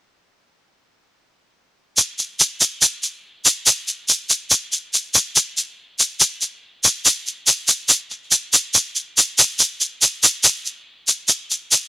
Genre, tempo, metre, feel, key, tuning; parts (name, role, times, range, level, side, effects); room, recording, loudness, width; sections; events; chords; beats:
bossa nova; 142 BPM; 4/4; straight
egg shaker; percussion; 2.0-11.9 s; -14 LUFS; equal
studio reverb; home recording on cassette; -15 LUFS; side -18 dB against mid
2.0-11.9 A section
| 1.97 2.40 2.82 3.24 | 3.67 4.09 4.51 4.94 | 5.36 5.78 6.21 6.63 | 7.05 7.48 7.90 8.32 | 8.75 9.17 9.59 10.02 | 10.44 10.86 11.29 11.71